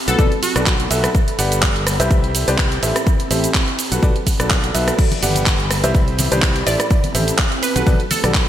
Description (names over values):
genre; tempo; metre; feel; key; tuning
piano house; 125 BPM; 4/4; swing 55% on 16ths; unclear; A4 = 440 Hz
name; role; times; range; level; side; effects
ethereal airy pad; texture; 0.0-8.5 s; C4 to B5; -27 LUFS; right 2 dB; ensemble chorus, built-in reverb, sidechain pumping
glassy wavetable pluck; melody; 0.1-1.1, 6.7-8.5 s; F#4 to D5; -23 LUFS; equal; chorus, ping-pong delay
clear upright piano; riff; 0.1-8.5 s; F#4 to F#5; -22 LUFS; equal; sidechain pumping, ping-pong delay
fuzz fingered electric bass; bass; 0.1-8.5 s; G1 to C2; -22 LUFS; equal; overdrive, sidechain pumping
house drum kit; drums; 0.1-8.5 s; crash cymbal, handclaps, hi-hat, ride cymbal, rim click, shaker; -20 LUFS; right 1 dB; gated reverb
electronic kick drum; drums; 0.2-8.5 s; none; -17 LUFS; equal; none
tambourine and congas; percussion; 5.0-8.5 s; none; -28 LUFS; left 2 dB; none
room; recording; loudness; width
light reverb, digital ambience; bright 1980s-style digital production; -14 LUFS; side -11 dB against mid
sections
0.0-8.5 A section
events
none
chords
0.0 Bm7; 1.1 Gmaj7; 1.9 Cmaj7; 2.8 Am7; 3.8 Bm7; 5.0 Gmaj7; 5.7 Cmaj7; 6.7 Am7; 7.6 Bm7